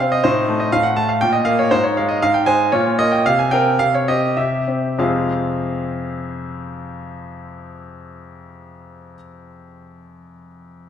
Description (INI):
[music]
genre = classical-period piano sonatina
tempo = 95-124 BPM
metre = 3/4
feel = straight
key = F minor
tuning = A4 = 438 Hz
[part]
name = bright grand piano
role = solo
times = 0.0-10.9 s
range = F2 to A5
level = -17 LUFS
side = equal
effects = none
[sound]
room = wet recital hall reverb, RT60 1.5 s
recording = none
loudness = -15 LUFS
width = side -8 dB against mid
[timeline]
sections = 0.0-5.0 A section; 5.0-8.7 B section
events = slowing down 1.0-5.0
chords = 0.2 Adim7; 1.2 N.C.; 1.7 Ab6; 2.7 Bbm; 3.2 Cmadd11; 4.4 C; 5.0 Fm